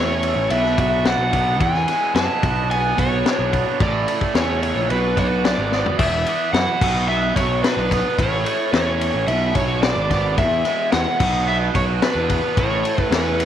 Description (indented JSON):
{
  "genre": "psychedelic rock",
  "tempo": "109 BPM",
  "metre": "4/4",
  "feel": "straight",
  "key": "B dorian",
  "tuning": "A4 = 438 Hz",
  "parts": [
    { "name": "overdriven slide guitar", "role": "melody", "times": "0.0-13.4 s", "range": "B4 to A5", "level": "-22 LUFS", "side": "left 2 dB", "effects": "slapback echo" },
    { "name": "combo organ", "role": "sustained chords", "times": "0.0-6.0 s", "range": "C#3 to G#4", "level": "-30 LUFS", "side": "right 14 dB", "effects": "none" },
    { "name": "raw garage guitar", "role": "riff", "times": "0.0-13.4 s", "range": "E2 to F#4", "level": "-24 LUFS", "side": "right 13 dB", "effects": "overdrive, flanger" },
    { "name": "fuzz picked electric bass", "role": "bass", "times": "0.0-13.4 s", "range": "E1 to F#2", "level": "-23 LUFS", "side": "equal", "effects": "overdrive, tube saturation" },
    { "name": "vintage drum kit", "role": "drums", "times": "0.2-13.4 s", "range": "crash cymbal, kick drum, ride cymbal, snare drum, toms", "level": "-22 LUFS", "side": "left 3 dB", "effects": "none" }
  ],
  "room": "studio reverb",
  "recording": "1960s-style stereo",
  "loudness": "-17 LUFS",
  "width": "side -10 dB against mid",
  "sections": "0.0-6.0 A section; 6.0-13.4 A section",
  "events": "drum fill 5.7",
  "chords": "0.0 A; 0.5 Bm; 1.6 E; 2.4 Bm; 3.8 A; 4.9 Bm; 6.0 E5; 6.8 Bm; 8.2 A; 9.3 Bm; 10.4 E; 11.2 Bm; 12.6 A"
}